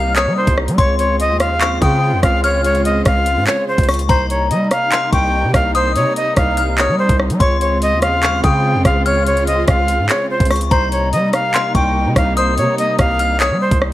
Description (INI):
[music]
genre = hip hop, drill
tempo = 145 BPM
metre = 4/4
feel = half-time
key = C phrygian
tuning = A4 = 440 Hz
[part]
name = breathy bright jazz flute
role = melody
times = 0.0-13.8 s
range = C5 to G5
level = -18 LUFS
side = equal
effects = slapback echo
[part]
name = delicate synth tine bell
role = second line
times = 0.0-13.6 s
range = Bb5 to F6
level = -22 LUFS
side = left 5 dB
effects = chorus, slapback echo
[part]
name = warm studio string section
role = sustained chords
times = 0.0-13.9 s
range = C3 to F4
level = -22 LUFS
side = right 1 dB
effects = none
[part]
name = hard-hitting 808-style bass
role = bass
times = 0.0-13.9 s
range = C2 to G3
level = -18 LUFS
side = equal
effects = none
[part]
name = drill drum kit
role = drums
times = 0.2-13.9 s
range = handclaps, hi-hat, kick drum, rim click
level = -17 LUFS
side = equal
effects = none
[sound]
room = digital ambience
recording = vinyl crackle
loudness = -13 LUFS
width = side -14 dB against mid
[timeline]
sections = 0.0-4.1 A section; 4.1-13.9 A section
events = none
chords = 0.0 Cm7; 0.8 Dbmaj7; 4.1 Cm7; 7.4 Dbmaj7; 10.7 Cm7